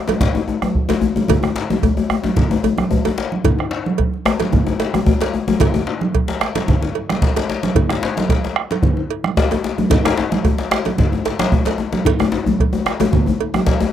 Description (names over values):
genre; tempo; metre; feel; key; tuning
west african traditional, West African drum ensemble; 111 BPM; 4/4; straight; none; none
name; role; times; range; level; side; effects
congas; percussion; 0.1-13.7 s; none; -22 LUFS; right 4 dB; none
cowbell; percussion; 0.1-13.5 s; none; -23 LUFS; right 14 dB; none
djembe; percussion; 0.1-13.9 s; none; -24 LUFS; left 4 dB; none
djembe; percussion; 0.1-13.9 s; none; -19 LUFS; left 6 dB; none
bombo; percussion; 0.2-13.8 s; none; -19 LUFS; right 1 dB; none
room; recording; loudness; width
light reverb; dry, close 1970s-style studio recording; -15 LUFS; side -10 dB against mid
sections
0.0-13.9 A section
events
none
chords
none